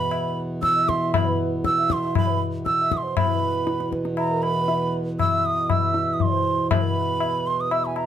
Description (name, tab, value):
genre	indian classical, Hindustani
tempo	119 BPM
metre	7/4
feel	straight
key	unclear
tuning	A4 = 440 Hz
part	bansuri	melody	0.0-8.1 s	G#5 to E6	-23 LUFS	right 2 dB	none
part	reedy long shakuhachi	second line	0.0-8.1 s	A#4 to E5	-31 LUFS	right 6 dB	none
part	pedal harmonium	drone	0.0-8.1 s	E2 to B2	-27 LUFS	right 1 dB	none
part	tabla	percussion	0.1-8.1 s	none	-24 LUFS	left 6 dB	none
room	wet studio reverb, RT60 0.5 s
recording	none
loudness	-20 LUFS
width	side -10 dB against mid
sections	0.0-3.2 A section; 3.2-8.1 B section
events	none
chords	none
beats	0.12 0.63 1.14 1.65 2.15 2.66 | 3.17 3.67 4.18 4.69 5.19 5.70 6.20 | 6.71 7.21 7.71